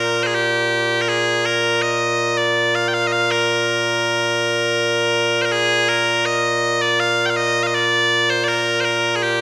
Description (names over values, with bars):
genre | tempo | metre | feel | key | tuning
scottish traditional, Scottish pipe music | 81 BPM | 3/4 | straight | Bb mixolydian | A4 = 440 Hz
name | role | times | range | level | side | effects
loud bright bagpipes | solo | 0.0-9.4 s | Bb2 to G5 | -18 LUFS | equal | none
room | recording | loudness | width
wet recital hall reverb, RT60 1.4 s | none | -18 LUFS | mono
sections
0.0-5.5 A section; 5.5-9.4 A section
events
none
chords
none